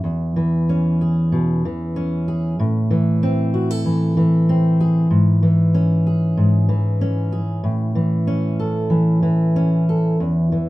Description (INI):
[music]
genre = folk, solo fingerstyle acoustic guitar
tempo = 95 BPM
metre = 4/4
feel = straight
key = E major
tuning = A4 = 440 Hz
[part]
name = fingerpicked steel-string acoustic guitar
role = solo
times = 0.0-10.7 s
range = E2 to A4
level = -16 LUFS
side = equal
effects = none
[sound]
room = moderate studio ambience, RT60 0.5 s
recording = minimal, uncompressed stereo recording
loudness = -16 LUFS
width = side -18 dB against mid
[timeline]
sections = 0.0-10.7 A section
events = none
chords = 0.0 E6; 2.6 Am; 5.1 E6/G#; 7.6 A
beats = | 0.04 0.69 1.33 1.96 | 2.59 3.22 3.85 4.48 | 5.10 5.73 6.37 7.00 | 7.64 8.27 8.90 9.55 | 10.20